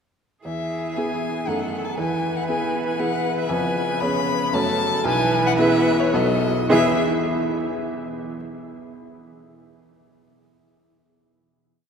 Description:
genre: quick classical-period movement for piano quartet.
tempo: 106-119 BPM.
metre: 3/4.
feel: straight.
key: E major.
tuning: A4 = 440 Hz.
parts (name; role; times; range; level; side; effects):
bright cello; second line; 0.4-7.0 s; C#3 to F#3; -27 LUFS; right 3 dB; none.
clear viola; accompaniment; 0.4-7.0 s; G#4 to B4; -27 LUFS; right 1 dB; none.
clear violin; melody; 0.5-7.0 s; C#5 to B5; -25 LUFS; left 4 dB; none.
clear baby grand piano; accompaniment; 0.5-8.4 s; B1 to E5; -24 LUFS; equal; none.
room: wet cathedral reverb, RT60 4.3 s.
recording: none.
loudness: -19 LUFS.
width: side -6 dB against mid.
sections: 0.5-6.7 A section; 6.7-8.3 final chord.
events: slowing down 2.7-6.7.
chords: 0.5 E; 1.5 D#dim/F#; 2.0 E; 3.5 C#7/E#; 4.5 F#m; 5.1 E/B; 6.1 B7; 6.7 E.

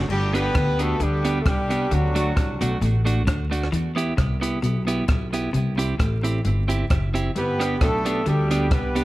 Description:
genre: ska.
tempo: 132 BPM.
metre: 4/4.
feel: swing 55% on 8ths.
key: G major.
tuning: A4 = 440 Hz.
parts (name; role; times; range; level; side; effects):
clean electric guitar; accompaniment; 0.0-9.0 s; A3 to G4; -27 LUFS; right 3 dB; tape echo.
upright bass; bass; 0.0-9.0 s; F#1 to E2; -24 LUFS; equal; none.
mellow horn section; melody; 0.1-2.8, 7.4-9.0 s; F#3 to B4; -25 LUFS; equal; tape echo.
clean electric guitar; riff; 0.1-8.9 s; F#2 to E3; -30 LUFS; left 2 dB; tube saturation, tape echo.
compact cocktail drum kit; drums; 0.1-9.0 s; crash cymbal, hi-hat, kick drum, rim click; -25 LUFS; equal; none.
room: light reverb.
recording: vinyl crackle.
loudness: -20 LUFS.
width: side -17 dB against mid.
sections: 0.1-9.0 A section.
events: none.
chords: 0.1 G; 1.9 D; 3.7 Em; 5.5 C; 7.4 G.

